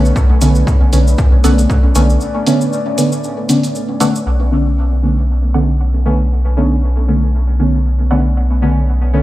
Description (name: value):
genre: dub techno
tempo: 117 BPM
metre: 4/4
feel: swing 56% on 16ths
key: B minor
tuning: A4 = 443 Hz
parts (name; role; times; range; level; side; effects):
- deep dark ambient pad; sustained chords; 0.0-9.2 s; A3 to D5; -24 LUFS; left 1 dB; chorus, built-in reverb, sidechain pumping
- filtered dub chord stab; riff; 0.0-8.3 s; A4 to F#5; -28 LUFS; right 3 dB; phaser, sidechain pumping, dub echo
- soft dub sub bass; bass; 0.0-9.2 s; B1; -13 LUFS; equal; sidechain pumping
- cabasa; percussion; 0.1-4.2 s; none; -26 LUFS; left 1 dB; none
- electronic kick drum; drums; 0.2-1.8 s; none; -12 LUFS; equal; none
- deep mellow chord stab; stabs; 0.4-9.2 s; D3 to C#4; -16 LUFS; equal; chorus, phaser, sidechain pumping, dub echo
- electronic hi-hat; drums; 0.4-4.1 s; none; -26 LUFS; right 3 dB; low-pass filter on hats, low-pass filter on room
room: digital ambience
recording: played on a big sound system in a bare room, large studio reverb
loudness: -11 LUFS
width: side -16 dB against mid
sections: 0.0-4.3 A section; 4.3-9.2 B section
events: break 2.2-4.3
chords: 0.0 Bm9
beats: | 0.16 0.67 1.18 1.70 | 2.21 2.72 3.23 3.75 | 4.26 4.77 5.29 5.80 | 6.31 6.83 7.34 7.85 | 8.36 8.88